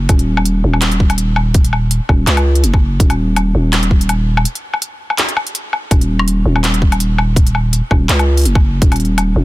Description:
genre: half-time drum and bass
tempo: 165 BPM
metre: 4/4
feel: swing 55% on 16ths, half-time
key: Eb minor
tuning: A4 = 439 Hz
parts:
  - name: growling 808-style bass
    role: bass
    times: 0.0-9.4 s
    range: Eb1 to Db2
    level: -13 LUFS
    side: equal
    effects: tube saturation
  - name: electronic kick drum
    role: drums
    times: 0.1-8.9 s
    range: none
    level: -11 LUFS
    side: equal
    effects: overdrive
  - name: organic electronic drum kit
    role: drums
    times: 0.1-9.3 s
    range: handclaps, hi-hat, woodblock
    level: -19 LUFS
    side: left 1 dB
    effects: none
room: little or no reverb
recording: dense, heavily limited modern master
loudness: -12 LUFS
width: side -18 dB against mid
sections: 0.0-9.4 A section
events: break 4.5-5.9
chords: none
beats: | 0.09 0.46 0.82 1.18 | 1.55 1.91 2.27 2.64 | 3.00 3.36 3.73 4.09 | 4.46 4.82 5.18 5.55 | 5.91 6.27 6.64 7.00 | 7.36 7.73 8.09 8.46 | 8.82 9.18

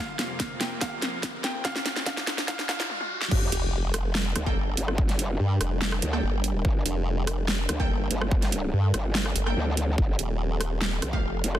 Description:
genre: heavy wobble dubstep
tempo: 144 BPM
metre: 4/4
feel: half-time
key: G minor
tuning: A4 = 440 Hz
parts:
  - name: bright grand piano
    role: melody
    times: 0.0-2.9 s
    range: F5 to G5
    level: -35 LUFS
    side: equal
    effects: ping-pong delay
  - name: supersaw pad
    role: sustained chords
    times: 0.0-11.6 s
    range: F2 to Bb4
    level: -36 LUFS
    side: equal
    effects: sidechain pumping, low-pass filter
  - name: riser and sub drop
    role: sound effects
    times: 0.3-5.0 s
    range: none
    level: -36 LUFS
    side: equal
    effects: none
  - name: dubstep drum kit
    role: drums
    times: 0.2-11.6 s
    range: crash cymbal, hi-hat, rim click, snare drum, toms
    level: -29 LUFS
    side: right 1 dB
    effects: none
  - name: electronic kick drum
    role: drums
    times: 0.4-11.2 s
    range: none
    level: -26 LUFS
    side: equal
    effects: none
  - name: growl bass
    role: bass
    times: 3.3-11.6 s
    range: F1 to D2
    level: -28 LUFS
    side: equal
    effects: chorus, overdrive
  - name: formant-sweep wobble bass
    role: bass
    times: 3.5-11.4 s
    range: Eb1 to G2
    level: -26 LUFS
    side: equal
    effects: chorus, overdrive
  - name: orchestra-hit-like synth stab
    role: stabs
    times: 4.5-11.2 s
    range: A3 to G5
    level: -35 LUFS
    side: right 1 dB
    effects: built-in reverb, ping-pong delay
room: digital ambience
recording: dense, heavily limited modern master, high-pass filter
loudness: -24 LUFS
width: side -12 dB against mid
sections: 0.0-3.3 A section; 3.3-11.6 B section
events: build-up 0.0-3.3; drum fill 0.0-2.9, 2.9-3.3; riser 0.3-3.3; drop 3.3-11.6; impact 3.3-5.0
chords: 0.0 Fsus4; 3.3 Gmadd9; 10.0 Fadd9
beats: 0.40 0.81 1.23 | 1.65 2.06 2.48 2.90 | 3.31 3.73 4.15 4.56 | 4.98 5.40 5.81 6.23 | 6.65 7.06 7.48 7.90 | 8.31 8.73 9.15 9.56 | 9.98 10.40 10.81 11.23

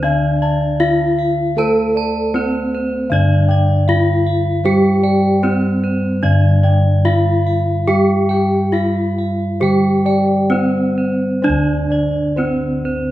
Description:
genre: Javanese gamelan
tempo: 64-78 BPM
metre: 4/4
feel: straight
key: D slendro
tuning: A4 = 440 Hz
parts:
  - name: gamelan-type bronze metallophone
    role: melody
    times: 0.0-13.1 s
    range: C4-25c to A4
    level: -19 LUFS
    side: equal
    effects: none
  - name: gamelan-type bronze metallophone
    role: accompaniment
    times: 0.0-13.1 s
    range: D3 to A3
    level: -19 LUFS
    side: equal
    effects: none
  - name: gamelan-type bossed gongs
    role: arpeggios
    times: 0.0-12.9 s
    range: C5-25c to A5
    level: -25 LUFS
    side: left 3 dB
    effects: none
  - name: gamelan-type bronze metallophone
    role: arpeggios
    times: 0.0-13.1 s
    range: C5-25c to A5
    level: -23 LUFS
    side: right 2 dB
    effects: none
  - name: gamelan-type bossed gongs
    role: bass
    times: 0.0-13.1 s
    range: D2 to A4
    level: -19 LUFS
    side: equal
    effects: none
room: wet recital hall reverb, RT60 1.7 s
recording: recorded in a church or concert hall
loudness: -13 LUFS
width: side -14 dB against mid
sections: 0.0-11.4 A section; 11.4-13.1 B section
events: none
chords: none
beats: 0.04 0.81 | 1.58 2.35 3.12 3.89 | 4.66 5.43 6.23 7.04 | 7.88 8.74 9.61 10.52 | 11.44 12.38

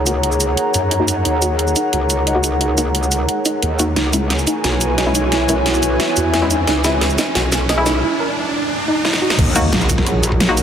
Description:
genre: dark technical drum and bass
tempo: 177 BPM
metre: 4/4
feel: straight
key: Eb phrygian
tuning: A4 = 440 Hz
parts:
  - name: deep dark ambient pad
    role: sustained chords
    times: 0.0-10.6 s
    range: Eb4 to Bb5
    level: -23 LUFS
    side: equal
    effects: chorus, built-in reverb, sidechain pumping
  - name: filtered dub chord stab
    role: stabs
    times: 0.0-10.6 s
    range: Ab3 to Gb4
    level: -23 LUFS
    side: left 2 dB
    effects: lush chorus, tape echo
  - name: metallic wobble bass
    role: bass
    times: 0.0-10.6 s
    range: Bb1 to Gb2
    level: -20 LUFS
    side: equal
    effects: chorus, overdrive
  - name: riser and impact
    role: sound effects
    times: 0.7-10.6 s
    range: none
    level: -24 LUFS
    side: right 1 dB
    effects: none
  - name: airy breathy pad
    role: texture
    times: 0.0-10.6 s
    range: Gb4 to Bb5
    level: -22 LUFS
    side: equal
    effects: chorus, sidechain pumping
  - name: soft round pluck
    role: arpeggios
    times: 0.1-9.3 s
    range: Eb4 to Eb5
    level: -24 LUFS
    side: right 2 dB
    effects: wide subtle chorus, sidechain pumping, tape echo
  - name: dubstep drum kit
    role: drums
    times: 0.1-10.6 s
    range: crash cymbal, hi-hat, shaker, snare drum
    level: -19 LUFS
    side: equal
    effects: high-pass filter on hats, high-pass filter on perc, high-pass filter on snare, high-pass filter on cymbals
  - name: electronic kick drum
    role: drums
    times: 9.4-10.4 s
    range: none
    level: -19 LUFS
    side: equal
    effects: none
room: moderate lush hall reverb, RT60 1.9 s, digital ambience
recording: dense, heavily limited modern master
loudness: -14 LUFS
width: side -8 dB against mid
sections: 0.0-9.4 A section; 9.4-10.6 B section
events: build-up 0.0-9.4; filter sweep on synth pluck 0.0-9.4; filter sweep on synth stab 0.0-9.4; riser 0.7-9.4; drum fill 4.0-8.0, 9.0-9.4; drop 9.4-10.6; impact 9.4-10.6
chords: 0.0 Ebm; 4.0 Dbm; 9.4 Ebm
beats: 0.23 0.57 0.91 | 1.25 1.59 1.93 2.27 | 2.61 2.95 3.29 3.62 | 3.96 4.30 4.64 4.98 | 5.32 5.66 6.00 6.34 | 6.67 7.01 7.35 7.69 | 8.03 8.37 8.71 9.05 | 9.39 9.73 10.06 10.40

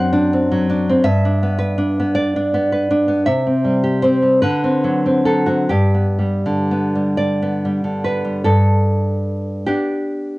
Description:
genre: romantic piece for solo classical guitar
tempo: 38-55 BPM (dotted quarters)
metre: 6/8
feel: rubato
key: G major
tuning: A4 = 440 Hz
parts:
  - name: nylon-string guitar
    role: solo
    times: 0.0-10.4 s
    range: F#2 to F#5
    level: -15 LUFS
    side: equal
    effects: none
room: moderate small room reverb, RT60 0.5 s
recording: home recording on cassette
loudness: -15 LUFS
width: side -20 dB against mid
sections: 0.0-8.5 A section; 8.5-10.4 B section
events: none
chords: 0.0 D7/F#; 1.0 G; 3.2 C; 4.4 D7; 5.7 G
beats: | 1.02 2.12 | 3.24 4.41 | 5.69 7.20 | 8.49 9.69

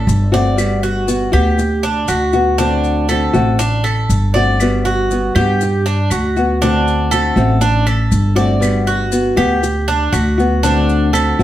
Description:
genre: latin, Cuban son and guajira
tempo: 119 BPM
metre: 4/4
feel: straight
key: G major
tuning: A4 = 441 Hz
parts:
  - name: Cuban tres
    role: arpeggios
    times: 0.0-11.4 s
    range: D4 to D5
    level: -18 LUFS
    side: right 3 dB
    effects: none
  - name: upright bass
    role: bass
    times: 0.0-11.4 s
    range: G1 to G2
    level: -16 LUFS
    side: equal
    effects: none
  - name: maracas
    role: percussion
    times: 0.1-11.4 s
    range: none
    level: -31 LUFS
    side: left 5 dB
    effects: none
  - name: nylon-string guitar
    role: accompaniment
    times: 0.3-11.4 s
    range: D3 to F#4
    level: -17 LUFS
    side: left 2 dB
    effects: none
  - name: claves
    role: percussion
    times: 0.6-11.4 s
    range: none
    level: -28 LUFS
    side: equal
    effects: none
room: wet studio reverb, RT60 0.9 s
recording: heard from further back in the room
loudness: -12 LUFS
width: side -13 dB against mid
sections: 0.0-11.4 A section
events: none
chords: 0.0 D7; 0.6 Gmaj7; 2.6 D7; 4.6 Gmaj7; 6.6 D7; 8.6 Gmaj7; 10.6 D7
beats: 0.08 | 0.58 1.08 1.58 2.08 | 2.59 3.09 3.59 4.09 | 4.60 5.10 5.60 6.11 | 6.61 7.11 7.61 8.12 | 8.62 9.12 9.63 10.13 | 10.63 11.14

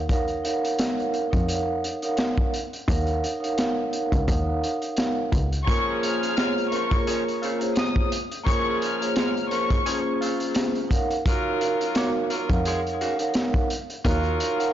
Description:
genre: hip hop, boom-bap hip-hop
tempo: 86 BPM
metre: 4/4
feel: swing 54% on 16ths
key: Bb minor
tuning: A4 = 439 Hz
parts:
  - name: rich cello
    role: bass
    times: 0.0-5.5, 12.5-14.3 s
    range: Db2 to F2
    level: -27 LUFS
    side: equal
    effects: transformer saturation
  - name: vibraphone with soft mallets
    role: accompaniment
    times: 0.1-14.7 s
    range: Bb3 to Gb5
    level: -26 LUFS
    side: right 2 dB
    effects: cassette tape, high-pass filter, low-pass filter
  - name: crunchy breakbeat drum kit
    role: drums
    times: 0.1-14.7 s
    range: hi-hat, kick drum, snare drum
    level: -26 LUFS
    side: equal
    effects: none
  - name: warm studio violin section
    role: melody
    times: 5.7-10.0 s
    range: Db6 to F6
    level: -29 LUFS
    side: left 3 dB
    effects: high-pass filter, low-pass filter, ping-pong delay
  - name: clear saxophone section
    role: stabs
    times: 5.7-14.7 s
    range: Db3 to Db5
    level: -30 LUFS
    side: left 1 dB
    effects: high-pass filter, low-pass filter, ping-pong delay
room: light reverb, small room ambience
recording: blown-out, overdriven recording, overdrive, nothing above 7.5 kHz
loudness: -22 LUFS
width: side -11 dB against mid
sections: 0.0-5.7 A section; 5.7-14.7 B section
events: none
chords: 0.0 Ebm9; 5.7 Bbm9; 10.9 Ebm9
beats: | 0.09 0.79 1.49 2.19 | 2.88 3.58 4.28 4.98 | 5.67 6.37 7.07 7.77 | 8.46 9.16 9.86 10.56 | 11.26 11.95 12.65 13.35 | 14.05

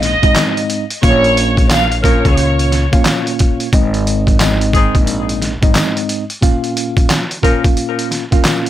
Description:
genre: hip hop, boom-bap hip-hop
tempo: 89 BPM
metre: 4/4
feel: swing 62% on 16ths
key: Bb minor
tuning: A4 = 440 Hz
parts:
  - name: dark studio violin section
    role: melody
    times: 0.0-3.2 s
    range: Db5 to F5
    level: -17 LUFS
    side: right 1 dB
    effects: high-pass filter, low-pass filter, ping-pong delay
  - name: mellow tine electric piano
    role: accompaniment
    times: 0.0-8.7 s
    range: Ab2 to F5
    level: -18 LUFS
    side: equal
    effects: medium stereo tremolo, high-pass filter, low-pass filter
  - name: upright bass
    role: bass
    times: 0.0-5.7 s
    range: Ab1 to Db2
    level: -17 LUFS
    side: equal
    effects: none
  - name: trip hop sampler-style drum kit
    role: drums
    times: 0.0-8.7 s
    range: handclaps, hi-hat, kick drum, snare drum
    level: -14 LUFS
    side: equal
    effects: none
  - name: tambourine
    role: percussion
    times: 0.4-8.6 s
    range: none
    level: -29 LUFS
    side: left 3 dB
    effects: none
  - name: dark saxophone section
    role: stabs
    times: 2.0-7.6 s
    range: Eb3 to Bb4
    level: -20 LUFS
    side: left 3 dB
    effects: high-pass filter, low-pass filter, ping-pong delay
room: little or no reverb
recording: none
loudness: -11 LUFS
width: side -12 dB against mid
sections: 0.0-8.7 A section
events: none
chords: 0.0 Ab; 1.0 Bbm; 3.7 Ab; 6.4 Bbm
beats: 0.36 | 1.03 1.71 2.38 3.05 | 3.73 4.40 5.08 5.75 | 6.42 7.10 7.77 8.45

